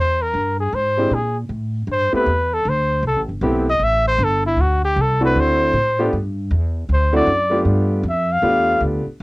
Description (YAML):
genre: jazz, small-group swing and bop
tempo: 156 BPM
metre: 4/4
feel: swing 64% on 8ths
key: G mixolydian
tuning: A4 = 440 Hz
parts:
  - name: mellow trumpet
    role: melody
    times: 0.0-8.8 s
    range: E4 to F5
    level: -18 LUFS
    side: equal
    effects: none
  - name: upright bass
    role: bass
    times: 0.0-9.2 s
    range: G1 to Bb2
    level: -20 LUFS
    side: equal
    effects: none
  - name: clear concert grand piano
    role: accompaniment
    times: 1.0-9.0 s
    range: G#3 to G4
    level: -20 LUFS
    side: equal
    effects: cassette tape
room: moderate booth ambience, RT60 0.2 s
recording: home recording on cassette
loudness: -16 LUFS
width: side -22 dB against mid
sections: 0.0-7.7 A section; 7.7-9.2 A section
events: trumpet solo 0.0-9.2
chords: 0.0 Eaug; 1.5 Am7; 4.6 D7; 6.1 Em; 6.9 D7; 7.7 G7